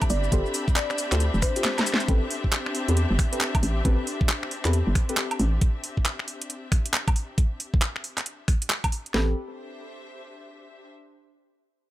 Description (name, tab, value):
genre	UK garage, two-step garage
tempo	136 BPM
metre	4/4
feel	swing 63% on 16ths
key	A minor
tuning	A4 = 440 Hz
part	thumb-piano-like synth pluck	melody	0.0-1.9 s	C5 to D5	-33 LUFS	equal	chorus, tape echo
part	rich studio violin section	sustained chords	0.0-2.1 s	B5	-40 LUFS	equal	sidechain pumping
part	garage drum kit	drums	0.0-9.3 s	kick drum, snare drum	-23 LUFS	equal	none
part	garage drum kit	drums	0.0-9.1 s	cabasa, finger snaps, handclaps, hi-hat, snare drum, woodblock	-26 LUFS	equal	none
part	rich symphonic string section	texture	0.0-10.9 s	C4 to E5	-34 LUFS	left 2 dB	sidechain pumping
part	hollow knocking FM bass	bass	0.1-5.6, 9.1-9.3 s	F1 to E2	-23 LUFS	equal	none
part	deep mellow chord stab	stabs	0.3-5.2, 9.1-9.3 s	C4 to C5	-33 LUFS	left 1 dB	wide subtle chorus, cassette tape, tape echo
room	little or no reverb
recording	none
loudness	-22 LUFS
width	side -15 dB against mid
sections	0.0-2.1 A section; 2.1-9.1 B section; 9.1-10.9 C section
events	kick drops out 1.6-2.1; drum fill 1.6-2.1; fade-out on string section 2.1-9.1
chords	0.0 G9sus4; 2.1 Am9; 5.6 Gsus4; 9.1 Am9